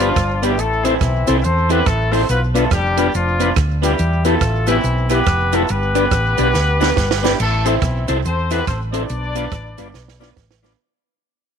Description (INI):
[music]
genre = ska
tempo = 141 BPM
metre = 4/4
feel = swing 62% on 8ths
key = A minor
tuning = A4 = 440 Hz
[part]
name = clear horn section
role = melody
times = 0.0-10.3 s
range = E3 to D5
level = -20 LUFS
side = left 2 dB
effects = none
[part]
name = electric guitar at the edge of break-up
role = accompaniment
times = 0.0-10.8 s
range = B3 to C5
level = -24 LUFS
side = right 13 dB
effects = none
[part]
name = tonewheel organ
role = stabs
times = 0.0-10.7 s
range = B3 to D5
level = -23 LUFS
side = left 12 dB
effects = slow rotary speaker
[part]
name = hollow-body short-scale fingered electric bass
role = bass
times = 0.0-10.7 s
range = F1 to E2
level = -20 LUFS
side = equal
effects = none
[part]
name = compact cocktail drum kit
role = drums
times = 0.0-10.8 s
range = crash cymbal, hi-hat, kick drum, rim click, snare drum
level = -22 LUFS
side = right 5 dB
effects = none
[part]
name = cabasa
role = percussion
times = 0.0-10.7 s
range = none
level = -38 LUFS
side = right 18 dB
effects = none
[sound]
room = light reverb, studio reverb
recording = 1960s-style stereo with parts hard left and right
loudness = -15 LUFS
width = side -7 dB against mid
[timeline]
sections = 0.0-7.4 A section; 7.4-10.8 B section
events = drum fill 6.5-7.4, 9.9-10.8; fade-out 7.4-10.8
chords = 0.0 G; 0.6 Am; 2.3 Bdim; 4.0 Em; 5.7 G; 7.4 Am; 9.1 Bdim